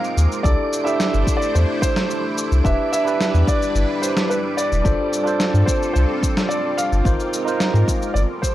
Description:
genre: sunset chillout.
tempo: 109 BPM.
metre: 4/4.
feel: straight.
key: C major.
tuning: A4 = 440 Hz.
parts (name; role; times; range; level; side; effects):
warm concert grand piano; melody; 0.0-8.5 s; B4 to F5; -24 LUFS; right 1 dB; tape echo.
tine electric piano; accompaniment; 0.0-8.2 s; D4 to C5; -24 LUFS; moving between left 3 dB and right 3 dB; auto-pan.
lush unison pad; sustained chords; 0.0-8.5 s; G3 to C5; -28 LUFS; equal; chorus, phaser.
electronic shaker and snare drum; drums; 0.0-8.5 s; none; -25 LUFS; left 1 dB; none.
wind-like tuned noise texture; texture; 0.0-8.5 s; D6; -34 LUFS; right 6 dB; built-in reverb.
warm sub bass; bass; 0.2-8.2 s; E1 to Ab2; -16 LUFS; equal; tube saturation.
electronic kick drum; drums; 0.4-8.5 s; none; -21 LUFS; equal; none.
room: little or no reverb.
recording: dry, gritty hardware recording, cassette tape.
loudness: -17 LUFS.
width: side -14 dB against mid.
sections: 0.0-8.5 A section.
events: none.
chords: 0.4 C69; 2.6 Em7; 4.9 G9sus4; 7.1 Ab69.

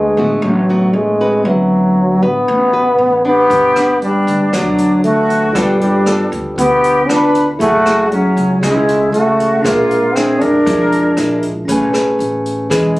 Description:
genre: bossa nova.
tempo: 117 BPM.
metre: 4/4.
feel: straight.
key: unclear.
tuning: A4 = 442 Hz.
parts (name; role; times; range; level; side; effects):
warm trombone; melody; 0.0-13.0 s; F#3 to D4; -12 LUFS; equal; none.
bell-like tine electric piano; accompaniment; 0.0-13.0 s; B3 to A5; -22 LUFS; right 1 dB; none.
nylon-string guitar; accompaniment; 0.0-13.0 s; G2 to B4; -19 LUFS; left 1 dB; none.
upright bass; bass; 0.0-13.0 s; F#1 to F2; -24 LUFS; equal; none.
small flute group; second line; 3.2-11.4 s; C#4 to B4; -19 LUFS; equal; none.
jazz brush drum kit; drums; 3.5-13.0 s; hi-hat, kick drum, rim click; -25 LUFS; equal; none.
room: light reverb.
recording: recorded on a phone in the room, studio ambience, compression.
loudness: -11 LUFS.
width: side -19 dB against mid.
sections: 0.0-11.7 A section; 11.7-13.0 B section.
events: trombone solo 11.7-13.0.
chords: 0.0 D6; 1.5 D13; 3.5 Gmaj7; 5.6 G9; 7.6 F#m9; 9.6 Bb7#11; 11.7 Amaj9.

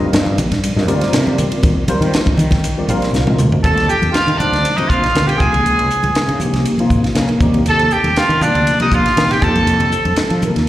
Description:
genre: electric jazz fusion.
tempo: 119 BPM.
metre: 4/4.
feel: straight.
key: Eb lydian.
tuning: A4 = 441 Hz.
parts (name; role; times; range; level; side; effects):
tine electric piano; accompaniment; 0.0-10.7 s; C3 to F5; -19 LUFS; equal; fast stereo tremolo, ensemble chorus, slapback echo.
fretless electric bass; bass; 0.0-10.7 s; Ab1 to F3; -18 LUFS; equal; none.
crisp fusion drum kit; drums; 0.1-10.7 s; hi-hat, kick drum, ride cymbal, snare drum, toms; -20 LUFS; equal; none.
congas; percussion; 0.3-10.6 s; none; -23 LUFS; equal; none.
warm trumpet; melody; 3.6-10.4 s; D4 to A4; -16 LUFS; right 1 dB; slapback echo.
biting overdriven guitar; second line; 3.7-10.4 s; D5 to A5; -22 LUFS; right 1 dB; slapback echo.
room: light reverb, studio reverb.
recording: live gig heard through the venue's PA, recital hall reverb.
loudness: -12 LUFS.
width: side -14 dB against mid.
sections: 0.0-3.6 A section; 3.6-10.7 B section.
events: drum fill 3.1-3.6; tine electric piano fill 6.9-7.7.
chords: 0.0 Ebmaj9; 5.4 Dbmaj9; 7.4 Ebmaj9; 9.4 F7sus4.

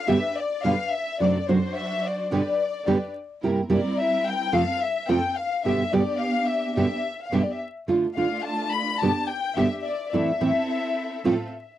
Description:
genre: tango.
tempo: 108 BPM.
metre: 4/4.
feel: rubato.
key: unclear.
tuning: A4 = 441 Hz.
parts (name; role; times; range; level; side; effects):
dark studio violin section; second line; 0.0-11.8 s; C5 to B5; -26 LUFS; left 4 dB; none.
clear studio string section; stabs; 0.0-11.5 s; A2 to C5; -30 LUFS; right 2 dB; none.
nylon-string guitar; accompaniment; 0.1-11.3 s; F2 to G4; -22 LUFS; right 2 dB; none.
room: light reverb.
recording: dry, close 1970s-style studio recording, vinyl crackle.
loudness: -22 LUFS.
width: side -12 dB against mid.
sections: 0.0-11.8 A section.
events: violin section solo 0.0-11.8.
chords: 0.1 G; 1.2 D7/F#; 2.3 G; 3.4 C7/G; 4.5 F; 5.6 G; 7.9 Dm; 9.0 G; 10.1 Am; 11.2 F/A.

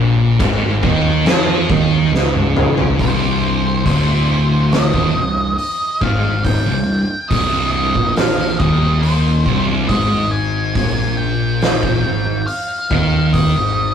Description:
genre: stoner and doom metal.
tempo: 70 BPM.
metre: 4/4.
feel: straight.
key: C minor.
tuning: A4 = 441 Hz.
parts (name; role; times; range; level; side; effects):
thick fuzz guitar; riff; 0.0-13.9 s; C2 to F3; -16 LUFS; equal; distortion.
fuzz picked electric bass; bass; 0.0-13.9 s; C1 to F2; -23 LUFS; equal; overdrive, tube saturation.
oversized low-tuned drum kit; drums; 0.4-13.5 s; crash cymbal, hi-hat, kick drum, snare drum, toms; -19 LUFS; equal; none.
octave-fuzz lead guitar; melody; 3.0-13.9 s; C5 to Ab5; -21 LUFS; equal; distortion, analog delay.
room: moderate studio reverb, RT60 0.6 s.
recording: rough rehearsal-room recording, tube saturation.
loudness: -13 LUFS.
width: side -8 dB against mid.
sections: 0.0-3.0 A section; 3.0-13.9 B section.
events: drum fill 2.1-3.0.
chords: 0.0 Ab5; 3.0 Cm; 9.9 Ab5.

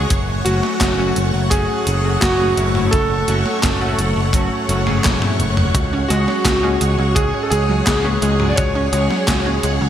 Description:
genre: synthwave.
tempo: 85 BPM.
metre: 4/4.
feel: straight.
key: F# minor.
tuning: A4 = 440 Hz.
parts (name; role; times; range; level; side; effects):
clear electric grand piano; melody; 0.0-9.6 s; F#4 to D5; -22 LUFS; right 2 dB; lush chorus, digital delay.
airy dreamy lead; second line; 0.0-9.6 s; F#4 to D5; -27 LUFS; left 1 dB; none.
string machine, full ensemble; sustained chords; 0.0-9.9 s; A3 to C#6; -24 LUFS; equal; ensemble chorus, sidechain pumping.
chorused polysynth; stabs; 0.0-9.7 s; F#3 to B4; -24 LUFS; left 1 dB; none.
modern bright picked electric bass; bass; 0.0-9.9 s; F#1 to C#2; -20 LUFS; equal; sidechain pumping.
gated 80s digital drum machine; drums; 0.1-9.8 s; handclaps, hi-hat, snare drum, toms; -22 LUFS; equal; gated reverb, gated reverb snare.
kick drum; drums; 0.1-9.4 s; none; -22 LUFS; equal; none.
wide unison pluck; arpeggios; 5.8-9.9 s; F#3 to F#4; -24 LUFS; right 3 dB; digital delay.
room: moderate lush hall reverb, RT60 2.7 s.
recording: bright 1980s-style digital production.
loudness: -15 LUFS.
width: side -10 dB against mid.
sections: 0.0-9.9 A section.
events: drum fill 5.0-5.8.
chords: 0.1 F#m; 5.8 C#sus4.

